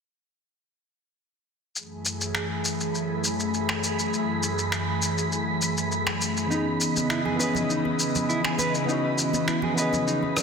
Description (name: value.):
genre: sunset chillout.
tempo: 101 BPM.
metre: 4/4.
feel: straight.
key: F# dorian.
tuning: A4 = 440 Hz.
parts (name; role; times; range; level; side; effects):
airy breathy pad; sustained chords; 1.7-10.4 s; F#2 to D#5; -28 LUFS; left 1 dB; chorus, phaser.
wind-like tuned noise texture; texture; 2.5-10.4 s; B5; -33 LUFS; right 4 dB; built-in reverb.
electronic shaker, finger snaps and rim click; drums; 1.8-10.4 s; none; -28 LUFS; left 1 dB; small room ambience, soft clipping on snare.
tine electric piano; accompaniment; 6.5-10.4 s; E3 to D#5; -27 LUFS; left 1 dB; auto-pan, ping-pong delay.
mellow electric guitar; arpeggios; 6.5-10.2 s; D#4 to B4; -30 LUFS; right 4 dB; spring reverb, ping-pong delay.
congas; percussion; 7.0-10.3 s; none; -35 LUFS; right 4 dB; none.
room: wet concert hall reverb, RT60 1.9 s.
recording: dense, heavily limited modern master.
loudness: -23 LUFS.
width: side -5 dB against mid.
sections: 1.8-10.4 A section.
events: none.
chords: 1.8 F#m9; 6.5 C#m9.